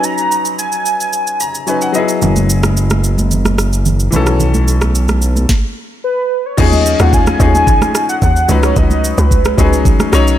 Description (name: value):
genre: amapiano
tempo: 110 BPM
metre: 4/4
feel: straight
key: Eb phrygian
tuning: A4 = 445 Hz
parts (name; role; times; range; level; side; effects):
- warm velvety synth lead; melody; 0.0-1.9, 6.0-10.0 s; B4 to Bb5; -17 LUFS; equal; chorus, tape echo
- clear grand piano; accompaniment; 0.0-10.4 s; E3 to Bb5; -17 LUFS; left 4 dB; none
- smooth R&B drum kit; drums; 0.0-10.4 s; crash cymbal, kick drum, rim click, shaker, snare drum; -16 LUFS; right 1 dB; none
- fat analog bass; bass; 2.2-5.5 s; Gb1 to B1; -13 LUFS; equal; none
- congas; percussion; 2.2-10.1 s; none; -20 LUFS; right 3 dB; none
- hollow log drum bass; bass; 6.6-10.4 s; Cb2 to Eb2; -13 LUFS; equal; none
room: digital ambience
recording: none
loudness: -11 LUFS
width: side -11 dB against mid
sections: 0.0-6.6 A section; 6.6-10.4 B section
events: grand piano fill 1.1-2.2; stop 5.5-6.6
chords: 0.0 Db9sus4; 1.9 Gb9sus4; 4.1 B9sus4; 6.6 Eb9sus4; 8.5 Db9sus4